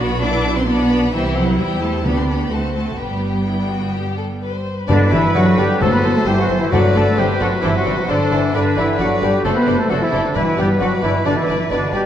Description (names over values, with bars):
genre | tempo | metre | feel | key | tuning
quick classical-period movement for symphony orchestra | 132 BPM | 4/4 | straight | G major | A4 = 436 Hz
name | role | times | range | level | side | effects
rich chamber violin section | melody | 0.0-12.1 s | F#4 to D6 | -27 LUFS | left 5 dB | none
rich symphonic violin section | second line | 0.0-12.0 s | E4 to F#5 | -26 LUFS | left 3 dB | none
warm symphonic viola section | accompaniment | 0.0-12.0 s | B3 to B4 | -27 LUFS | right 1 dB | none
dark chamber double bass section | bass | 0.0-12.0 s | F#1 to E2 | -23 LUFS | right 2 dB | none
warm studio cello section | bass | 0.0-12.1 s | D3 to D4 | -21 LUFS | right 1 dB | none
timpani | percussion | 2.1-7.4, 10.4-11.0 s | G2 to D3 | -22 LUFS | left 1 dB | none
bright oboe | second line | 4.9-12.1 s | A4 to D5 | -26 LUFS | equal | none
concert flute | second line | 4.9-12.1 s | D5 to B5 | -27 LUFS | left 1 dB | none
warm clarinet | second line | 4.9-12.1 s | D4 to B4 | -26 LUFS | left 2 dB | none
warm bassoon | accompaniment | 4.9-12.1 s | B2 to F#3 | -24 LUFS | right 2 dB | none
mellow French horn section | sustained chords | 4.9-12.1 s | D3 to B3 | -23 LUFS | left 4 dB | none
mellow trumpet section | stabs | 4.9-12.0 s | D4 to B4 | -24 LUFS | equal | none
room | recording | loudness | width
wet recital hall reverb, RT60 1.6 s | dark, warm production | -15 LUFS | side -10 dB against mid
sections
0.0-4.9 A section; 4.9-12.1 B section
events
none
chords
0.0 Bm; 1.1 C; 2.1 G/D; 2.5 D7; 3.0 G; 5.8 Am7/G; 6.7 D7/G; 8.5 G; 9.4 D7/F#; 10.4 G